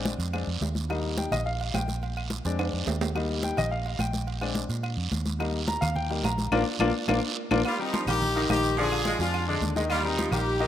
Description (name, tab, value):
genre	latin, salsa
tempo	213 BPM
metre	4/4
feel	straight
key	Eb major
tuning	A4 = 440 Hz
part	clear grand piano	accompaniment	0.0-10.7 s	D3 to Bb5	-29 LUFS	left 3 dB	none
part	vintage muted fingered electric bass	bass	0.0-10.7 s	Bb1 to Bb2	-30 LUFS	right 1 dB	none
part	congas	percussion	0.1-10.7 s	none	-34 LUFS	left 1 dB	none
part	guiro	percussion	0.1-10.7 s	none	-37 LUFS	right 7 dB	none
part	agogo bells and timbales	percussion	0.2-10.7 s	none	-37 LUFS	right 7 dB	none
part	claves	percussion	0.3-10.5 s	none	-38 LUFS	left 7 dB	none
part	brilliant horn section	melody	7.7-10.7 s	Bb3 to Ab4	-28 LUFS	left 1 dB	none
part	clear saxophone section	second line	7.7-10.7 s	Eb3 to Ab3	-33 LUFS	right 3 dB	none
room	moderate plate reverb, RT60 3.0 s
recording	rough home demo mix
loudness	-25 LUFS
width	side -11 dB against mid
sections	0.0-7.7 A section; 7.7-10.7 B section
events	grand piano solo 0.0-7.7; drum fill 2.6-3.2, 6.9-7.7; band accent 6.5-7.7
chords	0.0 Bb7; 0.9 Eb; 2.0 Bb7; 3.2 Eb; 4.3 Bb7; 5.4 Eb; 6.5 Bb; 7.7 Eb; 8.8 Bb7; 9.9 Eb